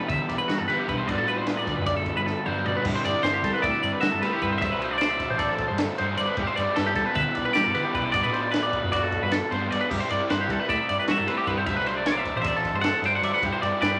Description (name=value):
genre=math rock and midwest emo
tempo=306 BPM (eighths)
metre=9/8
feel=straight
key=unclear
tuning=A4 = 441 Hz
part: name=mellow electric guitar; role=accompaniment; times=0.0-4.6 s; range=G2 to G4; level=-38 LUFS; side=equal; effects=none
part: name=twelve-string electric guitar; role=arpeggios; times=0.0-14.0 s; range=F#4 to E5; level=-29 LUFS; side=equal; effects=spring reverb
part: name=raw garage guitar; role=riff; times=0.0-14.0 s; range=B2 to C5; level=-32 LUFS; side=equal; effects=overdrive
part: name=hollow-body short-scale picked electric bass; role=bass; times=0.1-14.0 s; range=A1 to A3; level=-35 LUFS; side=equal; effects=none
part: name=compact cocktail drum kit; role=drums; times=0.1-13.9 s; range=crash cymbal, kick drum, ride cymbal, snare drum, toms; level=-35 LUFS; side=equal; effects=none
part: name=twangy electric guitar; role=melody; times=3.2-14.0 s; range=F#4 to G5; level=-29 LUFS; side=equal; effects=none
room=wet large studio reverb, RT60 0.8 s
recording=vinyl crackle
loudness=-25 LUFS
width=mono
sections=0.0-2.9 A section; 2.9-14.0 B section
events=drum fill 2.3-2.9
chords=0.0 Em7; 1.1 Bm7; 2.9 Cmaj9/G; 4.6 D9; 6.4 Em7/G; 8.1 Bm7; 9.9 Cmaj9/G; 11.7 D9; 13.4 Em7/G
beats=0.09 0.29 0.49 0.69 0.88 | 1.08 1.28 1.47 1.67 1.87 2.06 2.26 2.46 2.65 | 2.85 3.05 3.24 3.44 3.64 3.83 4.03 4.22 4.42 | 4.62 4.81 5.01 5.21 5.40 5.60 5.79 5.99 6.18 | 6.38 6.58 6.77 6.97 7.16 7.36 7.56 7.75 7.95 | 8.14 8.34 8.54 8.73 8.93 9.12 9.32 9.51 9.71 | 9.91 10.10 10.30 10.49 10.69 10.88 11.08 11.28 11.47 | 11.67 11.86 12.06 12.26 12.45 12.65 12.84 13.04 13.23 | 13.43 13.62 13.82